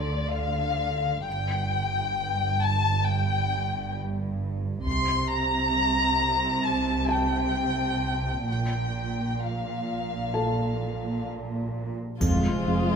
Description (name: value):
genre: cinematic, suspense film score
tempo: 66 BPM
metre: 4/4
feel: straight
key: unclear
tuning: A4 = 440 Hz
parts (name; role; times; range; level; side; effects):
- dark chamber violin section; melody; 0.0-13.0 s; C5 to C6; -27 LUFS; left 3 dB; none
- rich chamber cello section; bass; 0.0-13.0 s; F2 to D3; -30 LUFS; right 2 dB; none
- warm studio double bass section; bass; 0.0-13.0 s; F1 to D2; -31 LUFS; right 3 dB; none
- impact; sound effects; 0.0-1.3, 12.2-13.0 s; none; -32 LUFS; left 1 dB; none
- felt-muted upright piano; texture; 0.0-12.2 s; A4 to C6; -35 LUFS; left 2 dB; none
- taiko ensemble; drums; 4.9-6.6, 12.2-13.0 s; none; -33 LUFS; left 1 dB; none
- rich chamber violin section; second line; 12.2-13.0 s; F4; -30 LUFS; left 4 dB; none
- rich symphonic viola section; accompaniment; 12.2-13.0 s; Ab3; -28 LUFS; left 3 dB; none
- smooth gliding synth bass; riff; 12.2-13.0 s; F2; -25 LUFS; right 2 dB; none
- triangle; percussion; 12.2-13.0 s; none; -39 LUFS; equal; none
room: light reverb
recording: none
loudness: -24 LUFS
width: side -6 dB against mid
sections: 0.0-12.2 A section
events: impact 0.0-1.3, 12.2-13.0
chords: 0.0 Dm; 1.3 N.C.; 4.9 C5; 8.5 Bb5; 12.2 Fm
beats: 0.36 | 1.26 2.17 3.07 3.96 | 4.86 5.75 6.64 7.55 | 8.47 9.40 10.34 11.28 | 12.21